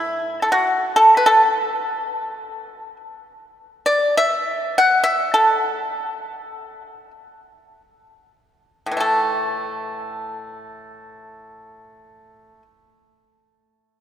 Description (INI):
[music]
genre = chinese traditional, Chinese solo plucked strings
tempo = free time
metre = none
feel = none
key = unclear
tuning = A4 = 440 Hz
[part]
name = pipa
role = solo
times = 0.0-12.6 s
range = A2 to F#5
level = -17 LUFS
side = equal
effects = none
[sound]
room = wet cathedral reverb, RT60 4.1 s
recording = recorded in a church or concert hall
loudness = -16 LUFS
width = side -10 dB against mid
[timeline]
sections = 0.0-9.0 A section; 9.0-14.0 B section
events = slowing down 3.9-9.0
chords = none